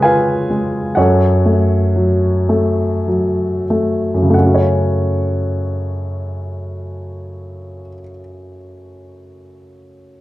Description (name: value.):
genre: classical, lyrical solo piano.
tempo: 46-66 BPM.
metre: 3/4.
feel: rubato.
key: F# minor.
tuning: A4 = 439 Hz.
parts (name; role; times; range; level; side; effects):
warm grand piano; solo; 0.0-10.2 s; F#2 to G#5; -14 LUFS; equal; none.
room: moderate recital hall reverb, RT60 1.6 s.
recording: dark, warm production.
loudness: -13 LUFS.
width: side -16 dB against mid.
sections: 0.0-4.3 A section; 4.3-8.1 B section.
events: slowing down 0.0-4.3.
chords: 0.0 C#7; 1.0 F#m.